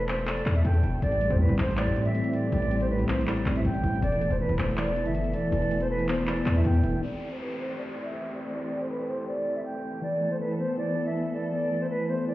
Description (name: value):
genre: hip hop, trap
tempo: 160 BPM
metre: 4/4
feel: half-time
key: A minor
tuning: A4 = 440 Hz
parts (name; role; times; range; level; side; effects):
- silver concert flute; melody; 0.0-12.3 s; B4 to G5; -31 LUFS; right 1 dB; low-pass filter, tape echo
- muted studio string section; sustained chords; 0.0-12.3 s; E3 to A4; -34 LUFS; left 1 dB; low-pass filter
- distorted 808-style bass; bass; 0.0-7.0 s; E1 to A2; -26 LUFS; equal; distortion
- trap drum kit; drums; 0.1-6.9 s; handclaps, hi-hat; -36 LUFS; left 1 dB; vintage 12-bit sampler grit
- tine electric piano; accompaniment; 1.0-7.0, 10.0-12.3 s; A2 to E5; -29 LUFS; equal; medium stereo tremolo, low-pass filter
- downlifter; sound effects; 7.0-10.0 s; none; -44 LUFS; left 1 dB; none
room: digital ambience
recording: heard muffled through a wall, stone room reverb, EQ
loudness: -25 LUFS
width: side -16 dB against mid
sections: 0.0-7.0 A section; 7.0-12.3 B section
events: filter sweep 7.0-12.3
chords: 0.0 Esus4; 1.0 Am7; 4.0 Esus4; 7.0 Am7; 10.0 Esus4